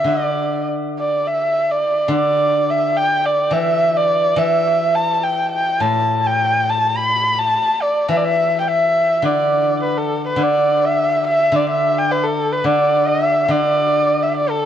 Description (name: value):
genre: chinese traditional, Chinese chamber ensemble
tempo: 106 BPM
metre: 2/4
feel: rubato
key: D zhi mode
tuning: A4 = 444 Hz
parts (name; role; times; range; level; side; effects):
- dark erhu; melody; 0.0-14.7 s; A4 to B5; -16 LUFS; equal; plate reverb, tape echo
- steel-string zither; accompaniment; 0.0-14.7 s; A2 to E3; -21 LUFS; left 1 dB; none
room: moderate studio reverb, RT60 0.6 s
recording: cassette tape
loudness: -15 LUFS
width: side -9 dB against mid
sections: 0.0-1.3 A section; 1.3-10.4 B section; 10.4-14.7 A section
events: none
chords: none